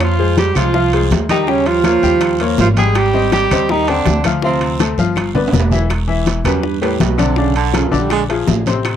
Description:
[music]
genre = Afro-Cuban jazz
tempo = 163 BPM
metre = 4/4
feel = straight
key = E minor from 5.9 s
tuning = A4 = 438 Hz
[part]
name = warm tenor saxophone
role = melody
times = 0.0-5.0 s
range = C4 to Ab4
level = -18 LUFS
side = equal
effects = slapback echo
[part]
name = warm baritone saxophone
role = second line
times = 0.0-8.2 s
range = F#2 to Ab3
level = -19 LUFS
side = right 11 dB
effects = none
[part]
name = bright baby grand piano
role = accompaniment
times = 0.0-9.0 s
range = B#2 to G5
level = -19 LUFS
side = left 7 dB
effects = none
[part]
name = upright bass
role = bass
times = 0.0-9.0 s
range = E1 to F2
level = -18 LUFS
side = equal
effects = none
[part]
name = bongos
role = percussion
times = 0.0-9.0 s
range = none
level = -21 LUFS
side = left 7 dB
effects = none
[part]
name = claves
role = percussion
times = 0.0-9.0 s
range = none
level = -31 LUFS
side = left 21 dB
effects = none
[part]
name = congas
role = percussion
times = 0.0-9.0 s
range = none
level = -22 LUFS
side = left 2 dB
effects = none
[part]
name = guiro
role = percussion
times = 0.0-9.0 s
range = none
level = -31 LUFS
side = right 21 dB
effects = none
[part]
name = timbales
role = percussion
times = 0.0-9.0 s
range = none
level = -24 LUFS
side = right 7 dB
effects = none
[sound]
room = little or no reverb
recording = dry, close 1970s-style studio recording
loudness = -12 LUFS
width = side -9 dB against mid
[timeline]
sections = 0.0-5.9 A section; 5.9-9.0 B section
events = drum fill 5.0-5.9; baritone saxophone solo 5.9-9.0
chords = 0.0 Fm9; 1.5 Eb7; 3.0 Abmaj7; 4.4 Dm7; 5.2 G7; 5.9 Em7; 7.4 Bm7b5; 8.1 A#9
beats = | 0.01 0.38 0.75 1.12 | 1.49 1.85 2.22 2.59 | 2.96 3.33 3.69 4.06 | 4.43 4.80 5.17 5.54 | 5.90 6.27 6.64 7.01 | 7.38 7.75 8.11 8.48 | 8.85

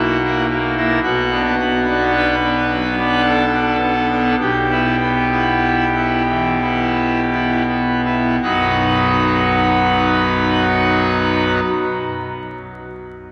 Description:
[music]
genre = classical, chorale-style piece for pipe organ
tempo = 40-59 BPM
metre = 3/4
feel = rubato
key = unclear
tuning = A4 = 440 Hz
[part]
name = pipe organ, full organ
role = solo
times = 0.0-11.6 s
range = B1 to B4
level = -17 LUFS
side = equal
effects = none
[sound]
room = wet cathedral reverb, RT60 5.0 s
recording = vinyl crackle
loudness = -17 LUFS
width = mono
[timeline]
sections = 0.0-8.4 A section; 8.4-12.8 B section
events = slowing down 0.0-8.4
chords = 0.0 F#7/B; 1.0 Bm; 4.4 Em/B; 8.4 B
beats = | 1.03 2.15 3.24 | 4.38 5.61 6.94 | 8.41 9.87 11.34

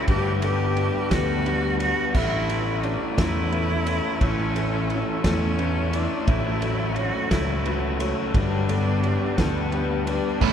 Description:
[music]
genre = post-rock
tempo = 58 BPM (dotted quarters)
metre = 6/8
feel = straight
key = unclear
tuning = A4 = 440 Hz
[part]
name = bright cello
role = melody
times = 0.0-10.5 s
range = B3 to G4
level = -29 LUFS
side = right 3 dB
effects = none
[part]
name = shimmering ambient pad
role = sustained chords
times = 0.0-10.5 s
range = B4 to E6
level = -38 LUFS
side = right 1 dB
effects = chorus, built-in reverb
[part]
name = electric guitar through a small old amp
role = arpeggios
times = 0.0-10.5 s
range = A2 to B3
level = -32 LUFS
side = equal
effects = none
[part]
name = felt-muted upright piano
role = arpeggios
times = 0.0-10.5 s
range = A4 to E5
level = -36 LUFS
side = right 4 dB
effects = none
[part]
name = raw garage guitar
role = riff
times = 0.0-10.5 s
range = G3 to B4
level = -27 LUFS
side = left 4 dB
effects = overdrive
[part]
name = fingered electric bass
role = bass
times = 0.1-10.5 s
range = G1 to E2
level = -26 LUFS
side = equal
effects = none
[part]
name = loose indie drum kit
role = drums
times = 0.1-10.5 s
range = crash cymbal, kick drum, ride cymbal, snare drum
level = -28 LUFS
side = right 1 dB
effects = none
[part]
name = fuzz guitar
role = riff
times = 10.4-10.5 s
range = A3 to A4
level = -20 LUFS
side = right 11 dB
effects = distortion
[sound]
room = wet cathedral reverb, RT60 4.8 s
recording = recorded in a church or concert hall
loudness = -21 LUFS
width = side -8 dB against mid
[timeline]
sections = 0.0-10.5 A section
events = none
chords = 0.1 Gmaj7; 2.1 A; 6.3 F#m7/A; 8.3 Gmaj7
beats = | 0.08 1.11 | 2.15 3.18 | 4.21 5.25 | 6.28 7.32 | 8.35 9.38 | 10.42

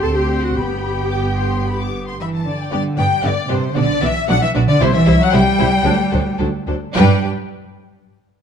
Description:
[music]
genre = quick classical-period movement for string orchestra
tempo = 112 BPM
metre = 4/4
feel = straight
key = G major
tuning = A4 = 439 Hz
[part]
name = warm studio violin section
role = melody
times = 0.0-7.3 s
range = C5 to D6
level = -21 LUFS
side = left 6 dB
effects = none
[part]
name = clear studio violin section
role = second line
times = 0.0-7.3 s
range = E4 to A5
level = -26 LUFS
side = left 4 dB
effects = none
[part]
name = rich symphonic viola section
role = accompaniment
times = 0.0-7.3 s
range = F#3 to A4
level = -23 LUFS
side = equal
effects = none
[part]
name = rich studio cello section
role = bass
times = 0.0-7.3 s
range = C3 to C4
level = -20 LUFS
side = right 2 dB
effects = none
[part]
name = rich studio double bass section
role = bass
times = 0.0-7.3 s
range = G1 to G2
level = -20 LUFS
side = right 3 dB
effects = none
[sound]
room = moderate recital hall reverb, RT60 1.5 s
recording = dark, warm production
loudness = -14 LUFS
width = side -7 dB against mid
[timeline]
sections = 0.0-2.7 A section; 2.7-7.0 B section; 7.0-8.4 C section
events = slowing down 1.6-7.0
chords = 0.0 D7sus4; 0.6 G; 3.8 Bm; 4.8 C; 5.9 D7; 7.0 G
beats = 0.03 | 0.56 1.11 1.65 2.18 | 2.71 3.23 3.76 4.28 | 4.80 5.33 5.86 6.40 | 6.96

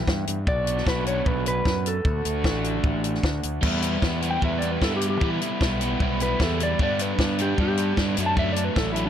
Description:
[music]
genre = indie rock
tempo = 152 BPM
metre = 4/4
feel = straight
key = E minor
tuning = A4 = 441 Hz
[part]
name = crunchy overdriven guitar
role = riff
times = 0.0-9.1 s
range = E3 to G4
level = -27 LUFS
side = equal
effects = dub echo
[part]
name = growling fingered electric bass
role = bass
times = 0.0-9.1 s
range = A1 to E3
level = -27 LUFS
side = equal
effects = overdrive
[part]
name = compact cocktail drum kit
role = drums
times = 0.1-9.1 s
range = crash cymbal, hi-hat, kick drum, snare drum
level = -26 LUFS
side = equal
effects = none
[part]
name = mellow electric guitar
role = melody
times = 0.5-9.1 s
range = D4 to A5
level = -28 LUFS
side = equal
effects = dub echo
[sound]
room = small room ambience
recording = echo-heavy mix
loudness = -21 LUFS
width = side -9 dB against mid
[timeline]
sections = 0.0-3.6 A section; 3.6-9.1 B section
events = clean electric guitar solo 3.6-9.1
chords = 0.5 Bm; 2.1 D; 3.6 Em; 6.8 G; 8.2 D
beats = 0.08 | 0.47 0.87 1.26 1.66 | 2.05 2.45 2.84 3.24 | 3.63 4.03 4.42 4.82 | 5.21 5.61 6.00 6.40 | 6.79 7.19 7.58 7.98 | 8.37 8.77

